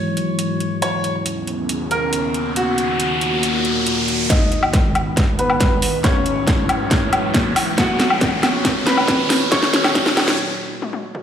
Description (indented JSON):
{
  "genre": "heavy wobble dubstep",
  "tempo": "138 BPM",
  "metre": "4/4",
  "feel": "half-time",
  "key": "G# minor",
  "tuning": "A4 = 439 Hz",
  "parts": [
    { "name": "bright concert grand piano", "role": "melody", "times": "0.0-10.4 s", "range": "B3 to C#6", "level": "-23 LUFS", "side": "equal", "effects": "low-pass filter, ping-pong delay" },
    { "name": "evolving wavetable pad", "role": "sustained chords", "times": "0.0-11.2 s", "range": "D#2 to C#4", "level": "-23 LUFS", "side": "equal", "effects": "phaser, built-in reverb, sidechain pumping" },
    { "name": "dubstep drum kit", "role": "drums", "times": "0.2-11.2 s", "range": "hi-hat, snare drum, toms, woodblock", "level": "-19 LUFS", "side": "equal", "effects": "none" },
    { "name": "riser", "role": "sound effects", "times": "1.4-10.4 s", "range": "none", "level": "-24 LUFS", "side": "equal", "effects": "none" },
    { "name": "electronic kick drum", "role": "drums", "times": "4.3-10.0 s", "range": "none", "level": "-20 LUFS", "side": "equal", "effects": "distortion" }
  ],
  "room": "moderate plate reverb, RT60 1.2 s, digital ambience",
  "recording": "played on a big sound system in a bare room, large studio reverb, high-pass filter",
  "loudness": "-16 LUFS",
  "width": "side -9 dB against mid",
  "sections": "0.0-4.3 A section; 4.3-11.2 B section",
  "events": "filter sweep on ambient pad 0.0-4.3; riser 1.4-4.3, 4.3-10.4; build-up 4.3-11.2; drum fill 4.3-10.4, 10.8-11.2; filter sweep on grand piano 4.3-11.2; filter sweep 4.3-11.2; break 10.4-11.2",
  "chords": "0.0 Eadd9; 0.8 Badd9/D#; 2.6 D#m; 4.3 G#m; 6.0 Eadd9; 7.8 Badd9/D#; 9.5 D#m",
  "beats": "0.39 | 0.82 1.26 1.69 2.13 | 2.56 3.00 3.43 3.87 | 4.30 4.74 5.17 5.61 | 6.04 6.47 6.91 7.34 | 7.78 8.21 8.65 9.08 | 9.52 9.95 10.39 10.82"
}